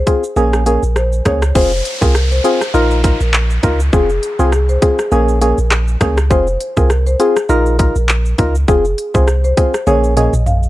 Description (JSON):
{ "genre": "dancehall", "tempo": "101 BPM", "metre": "4/4", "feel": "swing 56% on 16ths", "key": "F minor", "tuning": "A4 = 441 Hz", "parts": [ { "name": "punchy sub bass", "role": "bass", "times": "0.0-10.7 s", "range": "F1 to Db2", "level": "-15 LUFS", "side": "equal", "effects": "none" }, { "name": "marimba with medium mallets", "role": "melody", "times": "0.1-10.6 s", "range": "Ab4 to F5", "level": "-19 LUFS", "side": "left 1 dB", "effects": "analog delay" }, { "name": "percussive organ stab", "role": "accompaniment", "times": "0.1-10.3 s", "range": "Bb3 to Bb4", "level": "-16 LUFS", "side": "equal", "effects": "chorus, sidechain pumping" }, { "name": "island pop drum kit", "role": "drums", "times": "0.1-10.7 s", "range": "crash cymbal, handclaps, hi-hat, kick drum, rim click, shaker, toms", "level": "-16 LUFS", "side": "equal", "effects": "overdrive" }, { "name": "downlifter", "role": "sound effects", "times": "1.6-6.3 s", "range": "none", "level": "-27 LUFS", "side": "equal", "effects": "none" } ], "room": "little or no reverb", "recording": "dry, gritty hardware recording", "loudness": "-11 LUFS", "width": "side -16 dB against mid", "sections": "0.0-1.6 A section; 1.6-10.7 B section", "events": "drum fill 9.9-10.7", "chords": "0.4 Bbm7; 1.6 Fm; 2.7 Bbsus4; 3.9 Fm; 5.1 Bbm7; 6.3 Fm; 7.5 Bbsus4; 8.7 Fm; 9.9 Bbm7", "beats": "0.37 0.96 | 1.55 2.15 2.74 3.34 | 3.93 4.52 5.12 5.71 | 6.31 6.90 7.50 8.09 | 8.68 9.28 9.87 10.46" }